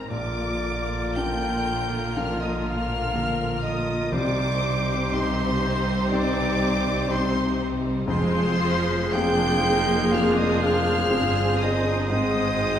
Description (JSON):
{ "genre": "cinematic, emotional film score for orchestra", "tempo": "61 BPM", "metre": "4/4", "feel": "rubato", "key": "F dorian", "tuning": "A4 = 440 Hz", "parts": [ { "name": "warm studio violin section", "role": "melody", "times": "0.0-12.8 s", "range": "Bb5 to G6", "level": "-31 LUFS", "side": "left 2 dB", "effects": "none" }, { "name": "concert flute", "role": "second line", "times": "0.0-12.8 s", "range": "Bb4 to G5", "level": "-30 LUFS", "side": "left 1 dB", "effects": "none" }, { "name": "rich studio violin section", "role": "second line", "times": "0.0-12.8 s", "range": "C4 to C5", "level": "-34 LUFS", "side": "left 2 dB", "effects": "none" }, { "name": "rich studio viola section", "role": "accompaniment", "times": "0.0-12.8 s", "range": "D3 to Ab4", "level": "-30 LUFS", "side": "equal", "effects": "none" }, { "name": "warm baby grand piano", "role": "accompaniment", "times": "0.0-12.8 s", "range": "Bb1 to C5", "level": "-31 LUFS", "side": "left 3 dB", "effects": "none" }, { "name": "rich studio double bass section", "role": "bass", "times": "0.0-12.8 s", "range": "F1 to C2", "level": "-30 LUFS", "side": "right 2 dB", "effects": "none" }, { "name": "warm studio cello section", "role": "bass", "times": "0.0-12.8 s", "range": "F2 to C3", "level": "-30 LUFS", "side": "right 1 dB", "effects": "none" }, { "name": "clear oboe", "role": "second line", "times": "0.1-12.8 s", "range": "Bb4 to C5", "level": "-34 LUFS", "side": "right 2 dB", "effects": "none" }, { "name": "warm clarinet", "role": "second line", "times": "0.1-12.8 s", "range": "F4 to Ab4", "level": "-33 LUFS", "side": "equal", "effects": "none" }, { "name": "mellow French horn section", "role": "sustained chords", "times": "0.1-12.8 s", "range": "Eb3 to Ab4", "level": "-32 LUFS", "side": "left 1 dB", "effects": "none" }, { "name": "timpani", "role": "percussion", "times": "4.1-9.6 s", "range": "F2 to C3", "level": "-32 LUFS", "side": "equal", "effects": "none" } ], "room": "wet recital hall reverb, RT60 1.4 s", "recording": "heard from further back in the room", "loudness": "-21 LUFS", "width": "side -9 dB against mid", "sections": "0.0-12.8 A section", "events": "none", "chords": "0.1 Bb; 4.1 Cm; 8.1 Fm; 12.1 Ab", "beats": "| 0.11 1.17 2.17 3.14 | 4.12 5.11 6.11 7.09 | 8.08 9.14 10.14 11.11 | 12.10" }